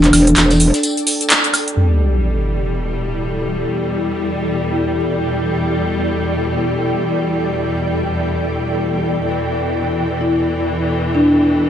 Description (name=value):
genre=bass house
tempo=free time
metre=none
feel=none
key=E minor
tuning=A4 = 439 Hz
part: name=marimba with soft mallets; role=melody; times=0.0-0.8, 10.2-11.3 s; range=D4 to E4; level=-16 LUFS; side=left 1 dB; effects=none
part: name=metallic wobble bass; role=bass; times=0.0-0.7 s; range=E1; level=-12 LUFS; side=equal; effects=chorus, overdrive
part: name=big-room dance drum kit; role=drums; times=0.0-1.8 s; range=cabasa, handclaps, hi-hat, woodblock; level=-15 LUFS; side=right 1 dB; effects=none
part: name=ethereal airy pad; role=texture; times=0.0-11.7 s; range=E4 to G5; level=-21 LUFS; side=right 1 dB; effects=ensemble chorus, built-in reverb, tremolo
part: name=damped 70s drum kit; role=drums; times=0.1-1.7 s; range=hi-hat, snare drum, tambourine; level=-24 LUFS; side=left 2 dB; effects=high-pass filter on hats, high-pass filter on snare, high-pass filter on perc, high-pass filter on room
part: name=bright studio string section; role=sustained chords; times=1.8-11.7 s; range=E2 to G3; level=-20 LUFS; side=left 1 dB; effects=none
part: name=sub drop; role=sound effects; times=1.8-3.6 s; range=none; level=-18 LUFS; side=equal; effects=none
room=moderate plate reverb, RT60 1.2 s, small room ambience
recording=nothing above 11.0 kHz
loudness=-15 LUFS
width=side -10 dB against mid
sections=0.0-1.8 A section; 1.8-11.7 B section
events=band accent 1.3; impact 1.8-3.6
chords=0.0 Em